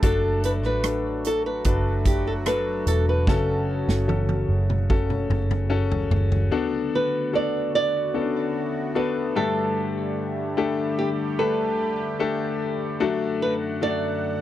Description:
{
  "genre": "pop ballad",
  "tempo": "74 BPM",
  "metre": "4/4",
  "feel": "straight",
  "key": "B minor",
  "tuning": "A4 = 443 Hz",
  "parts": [
    { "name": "flamenco guitar", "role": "melody", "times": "0.0-14.4 s", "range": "G4 to D5", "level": "-26 LUFS", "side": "right 2 dB", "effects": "none" },
    { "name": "warm grand piano", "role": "accompaniment", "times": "0.0-14.4 s", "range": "G2 to B4", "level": "-26 LUFS", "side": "left 5 dB", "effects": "none" },
    { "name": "sweeping resonant pad", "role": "sustained chords", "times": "0.0-14.4 s", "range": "F#2 to F#5", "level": "-32 LUFS", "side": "right 3 dB", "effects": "chorus, phaser" },
    { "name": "vintage muted fingered electric bass", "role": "bass", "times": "0.0-6.5 s", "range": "E1 to A1", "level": "-24 LUFS", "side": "right 1 dB", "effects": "none" },
    { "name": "natural country drum kit", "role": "drums", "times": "0.0-6.5 s", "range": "hi-hat, kick drum, rim click, snare drum, toms", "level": "-26 LUFS", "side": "equal", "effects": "none" }
  ],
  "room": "little or no reverb",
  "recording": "dry, close 1970s-style studio recording",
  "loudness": "-21 LUFS",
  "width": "side -12 dB against mid",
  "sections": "0.0-6.5 A section; 6.5-14.4 B section",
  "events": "drum fill 3.3-6.5",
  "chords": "0.0 D/F#; 3.3 F#m; 6.5 Bm7; 9.4 Gsus2; 13.0 D/F#",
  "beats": "| 0.03 0.84 1.65 2.46 | 3.27 4.08 4.90 5.71 | 6.52 7.33 8.14 8.95 | 9.76 10.57 11.38 12.19 | 13.00 13.81"
}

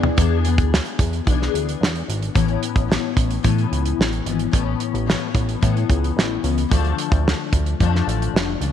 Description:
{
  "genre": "indie pop, bedroom pop",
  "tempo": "110 BPM",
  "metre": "4/4",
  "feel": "straight",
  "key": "A major",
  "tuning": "A4 = 441 Hz",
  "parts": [
    { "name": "picked steel-string acoustic guitar", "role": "accompaniment", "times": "0.0-8.7 s", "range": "A2 to G#4", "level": "-23 LUFS", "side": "left 13 dB", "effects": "ensemble chorus, vibrato effect" },
    { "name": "damped 70s drum kit", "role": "drums", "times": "0.0-8.7 s", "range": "hi-hat, kick drum, snare drum, toms", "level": "-21 LUFS", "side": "right 1 dB", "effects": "none" },
    { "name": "chorused synth bass", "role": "bass", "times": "0.2-8.7 s", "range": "F1 to A2", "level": "-22 LUFS", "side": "right 1 dB", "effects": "none" }
  ],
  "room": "studio ambience",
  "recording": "1960s-style stereo",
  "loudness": "-18 LUFS",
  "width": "side -9 dB against mid",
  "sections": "0.2-2.4 A section; 2.4-8.7 B section",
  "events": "drum fill 0.0",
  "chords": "0.2 E7; 2.4 Aadd9; 6.7 Dm",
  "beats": "| 0.18 0.72 1.27 1.81 | 2.35 2.90 3.44 3.99 | 4.53 5.08 5.62 6.17 | 6.71 7.26 7.80 8.35"
}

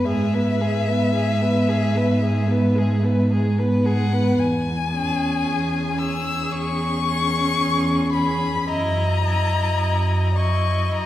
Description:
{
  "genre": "classical, slow romantic movement for string quartet",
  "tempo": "56 BPM",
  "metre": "4/4",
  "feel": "rubato",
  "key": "unclear",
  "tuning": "A4 = 440 Hz",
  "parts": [
    { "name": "warm violin", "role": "melody", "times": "0.0-11.1 s", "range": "E5 to E6", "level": "-25 LUFS", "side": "left 5 dB", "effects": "none" },
    { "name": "rich violin", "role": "second line", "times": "0.0-11.1 s", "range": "G#4 to D#5", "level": "-28 LUFS", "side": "left 2 dB", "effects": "none" },
    { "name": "rich viola", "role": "accompaniment", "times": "0.0-11.1 s", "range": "G#3 to E4", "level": "-25 LUFS", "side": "right 1 dB", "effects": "none" },
    { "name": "dark cello", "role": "bass", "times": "0.0-11.1 s", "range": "E2 to G#2", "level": "-22 LUFS", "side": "right 1 dB", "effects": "none" }
  ],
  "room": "wet recital hall reverb, RT60 1.7 s",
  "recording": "heard from further back in the room",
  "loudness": "-18 LUFS",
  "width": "side -13 dB against mid",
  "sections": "0.0-11.1 A section",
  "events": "none",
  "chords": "0.1 E/G#; 4.4 C#m/E; 8.7 F#6",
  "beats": "| 0.06 1.15 2.22 3.30 | 4.38 5.46 6.53 7.60 | 8.69 9.81 10.92"
}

